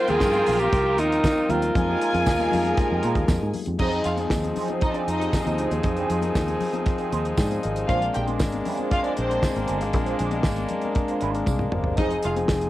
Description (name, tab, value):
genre	disco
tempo	117 BPM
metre	4/4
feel	straight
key	F dorian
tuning	A4 = 440 Hz
part	growling alto saxophone	melody	0.0-3.3 s	Eb4 to C5	-23 LUFS	equal	cassette tape
part	dark studio string section	second line	0.0-12.3 s	C4 to Ab5	-28 LUFS	equal	cassette tape
part	tine electric piano	accompaniment	0.0-12.7 s	F3 to G5	-30 LUFS	left 6 dB	cassette tape
part	muted French horn section	sustained chords	0.0-12.7 s	Eb3 to Bb4	-28 LUFS	equal	cassette tape
part	mellow electric guitar	accompaniment	0.1-12.7 s	G3 to C5	-33 LUFS	right 8 dB	wah, cassette tape
part	fingered electric bass	bass	0.1-12.7 s	F1 to Bb2	-28 LUFS	equal	none
part	damped 70s drum kit	drums	0.1-12.7 s	crash cymbal, hi-hat, kick drum, snare drum, toms	-25 LUFS	equal	cassette tape
part	congas	percussion	0.1-12.7 s	none	-36 LUFS	left 7 dB	none
part	tambourine	percussion	0.2-12.6 s	none	-43 LUFS	right 8 dB	none
room	light reverb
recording	home recording on cassette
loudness	-21 LUFS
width	side -15 dB against mid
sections	0.0-3.8 A section; 3.8-12.7 B section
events	tine electric piano fill 6.9-7.9; drum fill 11.5-12.0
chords	0.0 Eb69; 1.7 Fm11; 3.8 Fm7; 7.9 Bb9; 12.0 Fm7